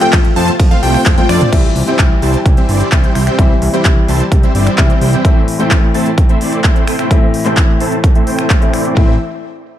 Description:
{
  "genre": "EDM, festival progressive house",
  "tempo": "129 BPM",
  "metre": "4/4",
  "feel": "straight",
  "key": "unclear",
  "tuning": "A4 = 440 Hz",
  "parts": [
    { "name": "clear grand piano", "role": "accompaniment", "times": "0.0-9.2 s", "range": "A2 to F4", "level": "-18 LUFS", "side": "left 3 dB", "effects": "sidechain pumping, ping-pong delay" },
    { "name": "lush unison pad", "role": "sustained chords", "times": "0.0-1.5 s", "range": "F3 to A4", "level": "-30 LUFS", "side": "right 2 dB", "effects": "none" },
    { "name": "plucky unison lead", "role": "arpeggios", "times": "0.0-1.5 s", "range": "D5 to A5", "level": "-18 LUFS", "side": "equal", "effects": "sidechain pumping, ping-pong delay" },
    { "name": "dense compressed supersaw", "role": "riff", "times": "0.0-9.1 s", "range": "G3 to A5", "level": "-17 LUFS", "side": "right 1 dB", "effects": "sidechain pumping, low-pass filter, ping-pong delay" },
    { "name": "big-room dance drum kit", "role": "drums", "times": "0.0-8.9 s", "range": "crash cymbal, finger snaps, handclaps, hi-hat, ride cymbal, toms", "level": "-20 LUFS", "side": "equal", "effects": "none" },
    { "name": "fat analog bass", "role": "bass", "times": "0.1-5.2, 9.0-9.2 s", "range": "G1 to F2", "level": "-16 LUFS", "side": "equal", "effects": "sidechain pumping" },
    { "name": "electronic kick drum", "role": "drums", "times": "0.1-9.1 s", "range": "none", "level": "-11 LUFS", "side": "equal", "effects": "none" }
  ],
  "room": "light reverb, digital ambience",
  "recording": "dark, warm production",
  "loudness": "-9 LUFS",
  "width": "side -11 dB against mid",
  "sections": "0.0-1.5 A section; 1.5-9.0 B section",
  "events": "drop 0.0-1.5; drum fill 1.1-1.5; filter sweep on supersaw synth 1.5-9.0",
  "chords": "0.0 F; 1.5 C; 5.2 Am",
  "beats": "0.13 0.60 1.06 | 1.53 1.99 2.46 2.92 | 3.39 3.85 4.32 4.78 | 5.25 5.71 6.18 6.64 | 7.11 7.57 8.04 8.50 | 8.97"
}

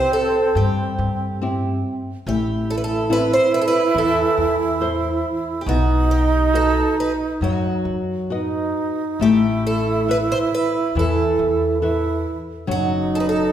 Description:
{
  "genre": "fado-style ballad",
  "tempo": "70 BPM",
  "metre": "4/4",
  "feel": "rubato",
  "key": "unclear",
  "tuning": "A4 = 440 Hz",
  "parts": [
    { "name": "picked twelve-string acoustic guitar", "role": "melody", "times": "0.0-13.5 s", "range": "F#4 to C5", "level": "-22 LUFS", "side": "right 2 dB", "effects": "none" },
    { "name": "wooden-headed alto flute", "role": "second line", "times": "0.0-13.5 s", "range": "C4 to E4", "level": "-22 LUFS", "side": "right 4 dB", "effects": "none" },
    { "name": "nylon-string guitar", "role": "accompaniment", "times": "0.0-13.5 s", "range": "E3 to E5", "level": "-24 LUFS", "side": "left 4 dB", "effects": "none" },
    { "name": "upright bass", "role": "bass", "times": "0.6-13.5 s", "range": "F#1 to G2", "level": "-24 LUFS", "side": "left 1 dB", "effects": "none" }
  ],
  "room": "wet recital hall reverb, RT60 1.8 s",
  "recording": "recorded in a church or concert hall",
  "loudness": "-17 LUFS",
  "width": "side -10 dB against mid",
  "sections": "0.0-13.5 A section",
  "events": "none",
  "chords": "0.0 C; 2.3 Am; 5.7 B; 9.2 Asus2; 12.7 F#m",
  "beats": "0.56 1.42 | 2.27 3.10 3.95 4.81 | 5.67 6.54 7.41 8.31 | 9.20 10.08 10.95 11.82 | 12.69"
}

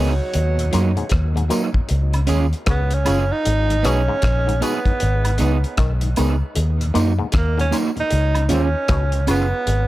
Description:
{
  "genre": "roots reggae",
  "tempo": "77 BPM",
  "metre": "4/4",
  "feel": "swing 62% on 16ths",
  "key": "G# dorian",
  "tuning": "A4 = 440 Hz",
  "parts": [
    { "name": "breathy tenor saxophone", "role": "melody", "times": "0.0-9.9 s", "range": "F#3 to D#4", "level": "-24 LUFS", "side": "right 2 dB", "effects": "dub echo" },
    { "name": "electric guitar at the edge of break-up", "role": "accompaniment", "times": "0.0-9.5 s", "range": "F#3 to G#4", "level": "-25 LUFS", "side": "right 5 dB", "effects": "dub echo" },
    { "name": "mellow tonewheel organ", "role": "accompaniment", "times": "0.0-9.4 s", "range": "D#2 to E#4", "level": "-30 LUFS", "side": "left 3 dB", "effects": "slow rotary speaker, dub echo" },
    { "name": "auto-wah clav", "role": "arpeggios", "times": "0.0-9.4 s", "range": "G#2 to D#3", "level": "-29 LUFS", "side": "left 6 dB", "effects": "overdrive" },
    { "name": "vintage muted fingered electric bass", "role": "bass", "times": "0.0-9.9 s", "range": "F#1 to F#2", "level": "-19 LUFS", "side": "equal", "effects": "none" },
    { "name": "cloth-damped thuddy drum kit", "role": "drums", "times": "0.3-9.9 s", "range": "hi-hat, kick drum, rim click", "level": "-24 LUFS", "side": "equal", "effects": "dub echo" },
    { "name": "tambourine and woodblock", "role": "percussion", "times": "0.7-9.5 s", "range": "none", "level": "-32 LUFS", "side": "right 1 dB", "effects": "none" }
  ],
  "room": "small room reverb",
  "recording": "none",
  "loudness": "-16 LUFS",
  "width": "side -16 dB against mid",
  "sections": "0.0-9.9 A section",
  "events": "tenor saxophone solo 0.0-9.9",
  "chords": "0.3 D#m; 1.9 C#; 3.4 G#m; 6.6 D#m; 8.1 C#",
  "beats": "| 0.34 1.12 1.90 2.67 | 3.45 4.23 5.00 5.78 | 6.56 7.33 8.11 8.89 | 9.67"
}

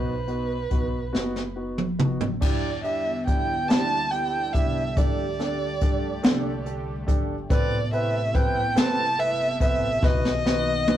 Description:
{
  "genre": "six-eight pop ballad",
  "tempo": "47 BPM (dotted quarters)",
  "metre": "6/8",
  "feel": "straight",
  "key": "E minor",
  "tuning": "A4 = 440 Hz",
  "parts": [
    { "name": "dark violin", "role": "melody", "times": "0.0-11.0 s", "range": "B4 to A5", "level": "-27 LUFS", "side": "right 2 dB", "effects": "ping-pong delay" },
    { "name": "warm concert grand piano", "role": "accompaniment", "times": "0.0-11.0 s", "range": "B3 to B4", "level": "-30 LUFS", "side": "equal", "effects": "none" },
    { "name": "upright bass", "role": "bass", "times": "0.0-11.0 s", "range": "F#1 to E2", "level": "-34 LUFS", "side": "equal", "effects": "none" },
    { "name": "jazz brush drum kit", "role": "drums", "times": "0.3-11.0 s", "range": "crash cymbal, hi-hat, kick drum, snare drum, toms", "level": "-24 LUFS", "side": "equal", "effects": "none" },
    { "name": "sweeping resonant pad", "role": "sustained chords", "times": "2.4-11.0 s", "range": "C3 to G4", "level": "-34 LUFS", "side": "left 1 dB", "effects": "chorus" }
  ],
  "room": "light reverb",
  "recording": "rough rehearsal-room recording",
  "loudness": "-22 LUFS",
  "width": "side -11 dB against mid",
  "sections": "0.0-2.4 A section; 2.4-11.0 B section",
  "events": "drum fill 1.1-2.4, 10.0-11.0",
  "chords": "0.0 B; 2.4 Em7; 5.0 Dsus4; 7.5 Amadd9; 10.0 B",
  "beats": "1.14 | 2.42 3.70 | 4.97 6.24 | 7.50 8.77 | 10.03"
}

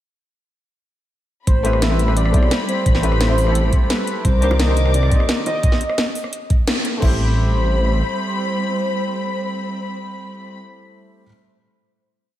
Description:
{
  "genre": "liquid drum and bass",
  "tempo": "173 BPM",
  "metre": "4/4",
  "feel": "straight",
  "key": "A minor",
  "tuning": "A4 = 440 Hz",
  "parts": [
    { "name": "warm velvety synth lead", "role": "melody", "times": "1.5-10.6 s", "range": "B4 to E5", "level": "-26 LUFS", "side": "equal", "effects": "chorus, analog delay" },
    { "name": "dark studio string section", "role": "sustained chords", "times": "1.5-10.6 s", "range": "Eb3 to D6", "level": "-26 LUFS", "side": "equal", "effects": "sidechain pumping" },
    { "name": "swelling detuned saw bass", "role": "bass", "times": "1.5-8.0 s", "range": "A1 to C2", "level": "-17 LUFS", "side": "equal", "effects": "none" },
    { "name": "drum and bass drum kit", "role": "drums", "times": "1.5-7.1 s", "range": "crash cymbal, hi-hat, rim click, snare drum", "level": "-23 LUFS", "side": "equal", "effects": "none" },
    { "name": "electronic kick drum", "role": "drums", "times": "1.5-7.1 s", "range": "none", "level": "-16 LUFS", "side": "equal", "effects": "none" },
    { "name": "felt-muted upright piano", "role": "accompaniment", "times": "1.6-11.3 s", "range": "A3 to Eb5", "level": "-26 LUFS", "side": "left 1 dB", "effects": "analog delay" },
    { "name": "bongos", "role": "percussion", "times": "4.5-5.5 s", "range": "none", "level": "-32 LUFS", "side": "right 1 dB", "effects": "none" }
  ],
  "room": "light reverb",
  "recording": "none",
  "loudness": "-16 LUFS",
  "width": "side -13 dB against mid",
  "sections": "1.5-7.0 drop; 7.0-9.8 final chord",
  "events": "drop 1.5-7.0; band accent 6.7",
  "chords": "1.5 Am9; 4.2 Cm9; 7.0 Am9",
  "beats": "| 1.47 1.82 2.17 2.51 | 2.86 3.21 3.55 3.90 | 4.25 4.59 4.94 5.29 | 5.63 5.98 6.33 6.67 | 7.02 7.37 7.71 8.06 | 8.41 8.76 9.10 9.45"
}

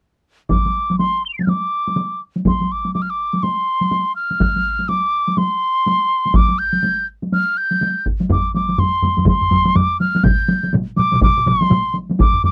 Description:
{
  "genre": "japanese traditional, taiko drum ensemble",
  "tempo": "123 BPM",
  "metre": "4/4",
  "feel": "swing 60% on 16ths",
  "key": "unclear",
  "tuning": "A4 = 440 Hz",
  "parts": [
    { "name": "mellow piccolo", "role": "melody", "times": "0.5-12.5 s", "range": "C6 to G7", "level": "-20 LUFS", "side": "equal", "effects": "none" },
    { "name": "taiko ensemble", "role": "percussion", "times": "0.5-12.5 s", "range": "none", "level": "-22 LUFS", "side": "equal", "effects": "none" },
    { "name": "taiko ensemble", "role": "percussion", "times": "0.5-12.3 s", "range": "none", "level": "-21 LUFS", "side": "equal", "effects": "none" },
    { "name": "solo taiko drums", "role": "percussion", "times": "8.3-12.5 s", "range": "none", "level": "-21 LUFS", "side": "equal", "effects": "none" },
    { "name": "taiko ensemble", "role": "percussion", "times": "10.3-11.8 s", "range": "none", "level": "-22 LUFS", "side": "equal", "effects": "none" }
  ],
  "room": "little or no reverb",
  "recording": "dry, close 1970s-style studio recording",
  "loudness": "-18 LUFS",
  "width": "mono",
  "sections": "0.5-8.3 A section; 8.3-12.5 B section",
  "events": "none",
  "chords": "none",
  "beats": "| 0.51 0.99 1.48 1.97 | 2.46 2.94 3.43 3.92 | 4.41 4.89 5.38 5.87 | 6.36 6.84 7.33 7.82 | 8.30 8.79 9.28 9.76 | 10.25 10.74 11.22 11.71 | 12.19"
}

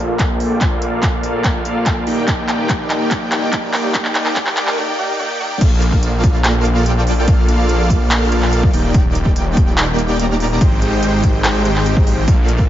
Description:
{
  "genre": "future bass",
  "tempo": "144 BPM",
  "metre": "4/4",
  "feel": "half-time",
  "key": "Bb major",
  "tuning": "A4 = 441 Hz",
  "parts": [
    { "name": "dense compressed supersaw", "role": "riff", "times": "0.0-12.7 s", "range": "Ab3 to Bb5", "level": "-18 LUFS", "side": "equal", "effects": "sidechain pumping, low-pass filter, digital delay" },
    { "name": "wide detuned saw bass", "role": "bass", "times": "0.0-12.7 s", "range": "Eb1 to Bb1", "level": "-19 LUFS", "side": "equal", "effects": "chorus, sidechain pumping, high-pass filter" },
    { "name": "big-room dance drum kit", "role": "drums", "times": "0.2-12.6 s", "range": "crash cymbal, handclaps, hi-hat", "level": "-20 LUFS", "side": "equal", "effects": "overdrive, high-pass filter on snare, high-pass filter on hats, high-pass filter on cymbals, high-pass filter on room" },
    { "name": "electronic kick drum", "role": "drums", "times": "0.2-12.7 s", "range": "none", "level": "-16 LUFS", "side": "equal", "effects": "overdrive" }
  ],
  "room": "light reverb, digital ambience",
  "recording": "high-pass filter, nothing above 7.5 kHz",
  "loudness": "-13 LUFS",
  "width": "side -12 dB against mid",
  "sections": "0.0-5.6 A section; 5.6-12.7 B section",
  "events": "build-up 0.0-5.6; drum fill 0.0-4.8; filter sweep on supersaw synth 0.0-5.6; filter sweep 0.0-5.6; break 4.8-5.6; drop 5.6-12.7",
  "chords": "0.0 Bbmaj7; 2.1 Ebmaj7; 3.9 Ab5; 5.6 Bbmaj7; 8.7 Ebmaj7; 10.6 Abmaj7",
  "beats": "0.19 | 0.61 1.03 1.44 1.86 | 2.28 2.69 3.11 3.53 | 3.94 4.36 4.78 5.19 | 5.61 6.03 6.44 6.86 | 7.28 7.69 8.11 8.53 | 8.94 9.36 9.78 10.19 | 10.61 11.03 11.44 11.86 | 12.28"
}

